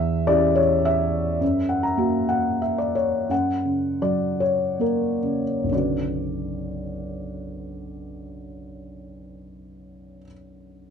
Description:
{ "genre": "classical, lyrical solo piano", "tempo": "59-107 BPM", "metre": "3/4", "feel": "rubato", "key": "B minor", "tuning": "A4 = 440 Hz", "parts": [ { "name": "felt-muted upright piano", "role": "solo", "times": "0.0-10.9 s", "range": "B1 to A#5", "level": "-22 LUFS", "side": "left 1 dB", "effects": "none" } ], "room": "light reverb", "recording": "dark, warm production", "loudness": "-20 LUFS", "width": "side -7 dB against mid", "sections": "0.0-3.3 A section; 3.3-5.7 B section; 5.7-10.9 C section", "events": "felt piano fill 1.4-3.3; slowing down 1.4-5.7", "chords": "0.0 C#dim/E; 1.4 F#; 5.7 Bmadd9", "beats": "0.28 0.85 | 1.41 1.99 2.63 | 3.32 4.03 4.81 | 5.72 6.73 7.70 | 8.64 9.61 10.61" }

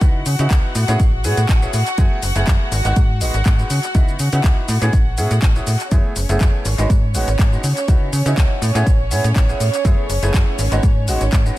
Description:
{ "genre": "filtered disco house", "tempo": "122 BPM", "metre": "4/4", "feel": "swing 53% on 16ths", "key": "unclear", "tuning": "A4 = 443 Hz", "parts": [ { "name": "bright concert grand piano", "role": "accompaniment", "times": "0.0-11.6 s", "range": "G#3 to G#4", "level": "-26 LUFS", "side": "equal", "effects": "phaser, sidechain pumping" }, { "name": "warm studio violin section", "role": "sustained chords", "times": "0.0-11.6 s", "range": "C#4 to F#5", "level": "-25 LUFS", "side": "right 1 dB", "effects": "sidechain pumping" }, { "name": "slap-like FM bass", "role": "bass", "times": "0.0-11.5 s", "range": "F#1 to C#3", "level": "-18 LUFS", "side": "equal", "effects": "sidechain pumping" }, { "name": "electronic kick drum", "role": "drums", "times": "0.0-11.4 s", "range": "none", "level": "-15 LUFS", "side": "equal", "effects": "overdrive, studio reverb" }, { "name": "house drum kit", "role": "drums", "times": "0.0-11.5 s", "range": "handclaps, hi-hat, shaker", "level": "-26 LUFS", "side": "left 2 dB", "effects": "overdrive, sidechain pumping on hats, studio reverb, sidechain pumping on perc, sidechain pumping on cymbals, analog delay" } ], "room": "digital ambience", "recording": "echo-heavy mix", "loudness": "-14 LUFS", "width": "side -16 dB against mid", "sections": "0.0-11.6 A section", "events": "none", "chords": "0.0 C#m11; 0.8 Amaj7; 2.0 F#m11; 2.7 G#m7; 3.7 C#m11; 4.7 Amaj7; 5.9 F#m11; 6.7 G#m7; 7.6 C#m11; 8.6 Amaj7; 9.8 F#m11; 10.6 G#m7", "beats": "| 0.01 0.51 1.00 1.49 | 1.98 2.47 2.96 3.46 | 3.95 4.44 4.93 5.42 | 5.92 6.41 6.90 7.39 | 7.88 8.37 8.87 9.36 | 9.85 10.34 10.83 11.32" }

